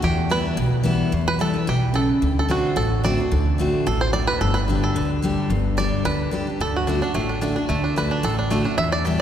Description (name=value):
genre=bluegrass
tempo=219 BPM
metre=4/4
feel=swing 54% on 8ths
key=D major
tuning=A4 = 439 Hz
part: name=bluegrass banjo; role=melody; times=0.0-9.2 s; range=A3 to E5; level=-25 LUFS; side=right 2 dB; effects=none
part: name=picked steel-string acoustic guitar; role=accompaniment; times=0.0-9.2 s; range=E2 to G4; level=-22 LUFS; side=left 1 dB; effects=none
part: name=upright bass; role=bass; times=0.0-9.2 s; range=G1 to E2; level=-24 LUFS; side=equal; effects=none
room=wet cathedral reverb, RT60 4.7 s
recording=recorded in a church or concert hall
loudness=-19 LUFS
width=side -9 dB against mid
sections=0.0-9.2 A section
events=five-string banjo solo 0.0-9.2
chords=0.0 Em; 2.2 D7; 4.4 G5; 6.6 D